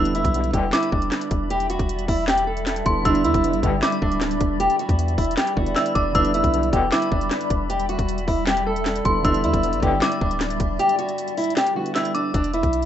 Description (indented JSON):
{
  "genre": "hip hop, trap",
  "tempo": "155 BPM",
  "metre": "4/4",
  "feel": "half-time",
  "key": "E minor",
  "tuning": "A4 = 440 Hz",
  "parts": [
    { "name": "fingerpicked acoustic archtop guitar", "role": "melody", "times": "0.0-12.9 s", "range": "D4 to A4", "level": "-23 LUFS", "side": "equal", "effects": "low-pass filter, digital delay" },
    { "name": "dark detuned synth bell", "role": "second line", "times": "0.0-12.3 s", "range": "C6 to E6", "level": "-26 LUFS", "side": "equal", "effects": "chorus, tremolo, digital delay" },
    { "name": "dark concert grand piano", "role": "accompaniment", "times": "0.0-12.4 s", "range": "D3 to E4", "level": "-29 LUFS", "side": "right 3 dB", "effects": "low-pass filter" },
    { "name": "granular cloud pad", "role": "sustained chords", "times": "0.7-12.3 s", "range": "G3 to B5", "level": "-29 LUFS", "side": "left 1 dB", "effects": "built-in reverb" },
    { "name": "long sustained 808-style bass", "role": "bass", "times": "0.0-12.9 s", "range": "D1 to E2", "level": "-27 LUFS", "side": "equal", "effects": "none" },
    { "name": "trap drum kit", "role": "drums", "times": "0.1-12.9 s", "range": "handclaps, hi-hat, kick drum, snare drum", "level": "-24 LUFS", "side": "equal", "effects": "none" },
    { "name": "mellow brass ensemble", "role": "stabs", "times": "0.3-0.7, 3.4-3.8, 6.5-6.9, 9.6-9.9 s", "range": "G2 to D3", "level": "-28 LUFS", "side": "left 5 dB", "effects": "none" }
  ],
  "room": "light reverb, small room ambience",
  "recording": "rough home demo mix, nothing above 8.0 kHz",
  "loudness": "-19 LUFS",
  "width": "side -10 dB against mid",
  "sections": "0.0-12.3 A section",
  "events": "kick muted 10.8-12.3",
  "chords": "0.0 Em7; 12.3 E5"
}